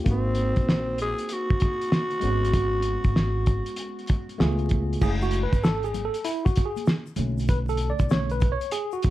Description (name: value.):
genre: hip hop, jazz-hop.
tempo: 97 BPM.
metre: 4/4.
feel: swing 66% on 16ths.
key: F# minor.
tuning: A4 = 437 Hz.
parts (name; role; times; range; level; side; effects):
tine electric piano; accompaniment; 0.0-9.1 s; D3 to D5; -29 LUFS; right 1 dB; overdrive, medium stereo tremolo.
growling tenor saxophone; melody; 0.1-4.4 s; B#3 to G#4; -29 LUFS; equal; tape echo.
upright bass; bass; 0.1-8.5 s; F#1 to C#2; -27 LUFS; equal; none.
cloth-damped thuddy drum kit; drums; 0.1-9.1 s; crash cymbal, hi-hat, kick drum, snare drum; -24 LUFS; equal; none.
tube shaker and congas; percussion; 5.0-9.1 s; none; -39 LUFS; left 7 dB; none.
room: light reverb.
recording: dark, warm production, vinyl crackle.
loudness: -22 LUFS.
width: side -15 dB against mid.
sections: 0.0-5.0 A section; 5.0-9.1 B section.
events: tine electric piano solo 5.0-9.1.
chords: 0.1 G#7; 2.2 C#7sus4/G#; 4.4 C#7b13; 5.0 F#m9; 7.2 Bm9.